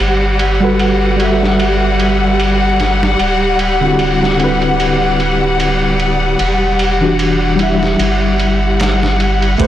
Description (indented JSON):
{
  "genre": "trip hop",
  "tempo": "75 BPM",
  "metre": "4/4",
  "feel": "swing 56% on 16ths",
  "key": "unclear",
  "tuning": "A4 = 440 Hz",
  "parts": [
    { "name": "warm studio string section", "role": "sustained chords", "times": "0.0-9.7 s", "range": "G3 to F#5", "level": "-15 LUFS", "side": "left 2 dB", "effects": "none" },
    { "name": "soft dub sub bass", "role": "bass", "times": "0.0-9.7 s", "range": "D1 to A1", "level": "-18 LUFS", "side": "equal", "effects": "transformer saturation" },
    { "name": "boom bap sampler-style drum kit", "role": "drums", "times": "0.4-9.7 s", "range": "kick drum, ride cymbal, snare drum", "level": "-20 LUFS", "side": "right 2 dB", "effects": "low-pass filter on cymbals, soft clipping on snare, low-pass filter on snare, low-pass filter on kick, low-pass filter on room" },
    { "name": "tine electric piano", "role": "accompaniment", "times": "0.6-9.7 s", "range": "D3 to E5", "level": "-17 LUFS", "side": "equal", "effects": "medium stereo tremolo, tape echo" }
  ],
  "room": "light reverb",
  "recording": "blown-out, overdriven recording, overdrive",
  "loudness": "-11 LUFS",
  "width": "side -12 dB against mid",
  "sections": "0.0-9.6 A section",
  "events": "none",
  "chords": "0.0 Gmaj9; 3.2 D9; 6.4 Em9; 8.0 Emadd9/G"
}